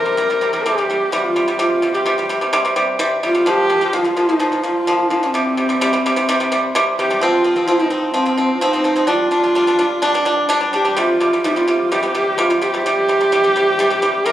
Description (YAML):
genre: mongolian traditional, Mongolian folk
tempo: 128 BPM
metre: 4/4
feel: straight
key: C minor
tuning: A4 = 440 Hz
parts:
  - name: dark horsehead fiddle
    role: melody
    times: 0.0-14.3 s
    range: C4 to Bb4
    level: -17 LUFS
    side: equal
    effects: none
  - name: pipa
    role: arpeggios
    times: 0.0-14.3 s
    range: Bb2 to D4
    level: -17 LUFS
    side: equal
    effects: none
room: moderate recital hall reverb, RT60 1.7 s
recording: recorded on a phone in the room, club reverb, compression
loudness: -14 LUFS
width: side -12 dB against mid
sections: 0.0-7.2 A section; 7.2-14.3 B section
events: none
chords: 0.0 C5; 3.5 Bb5; 5.3 C5; 7.2 F5; 9.1 G5; 11.0 C5